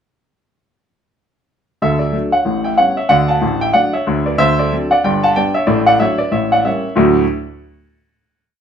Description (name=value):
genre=jazz, stride piano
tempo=185 BPM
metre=4/4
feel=swing 59% on 8ths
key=D major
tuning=A4 = 440 Hz
part: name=warm grand piano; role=solo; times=1.8-7.2 s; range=G1 to A5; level=-12 LUFS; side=equal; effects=none
room=wet studio reverb, RT60 0.8 s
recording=heard from further back in the room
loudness=-12 LUFS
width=side -8 dB against mid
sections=1.8-7.0 A section; 7.0-8.3 final chord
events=none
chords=1.8 D; 2.5 A9; 3.1 D; 4.4 D7; 5.0 G; 5.7 D/A; 6.3 A7b9; 7.0 D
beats=| 1.81 2.13 2.46 2.78 | 3.10 3.42 3.75 4.07 | 4.39 4.72 5.04 5.36 | 5.69 6.01 6.34 6.66 | 6.99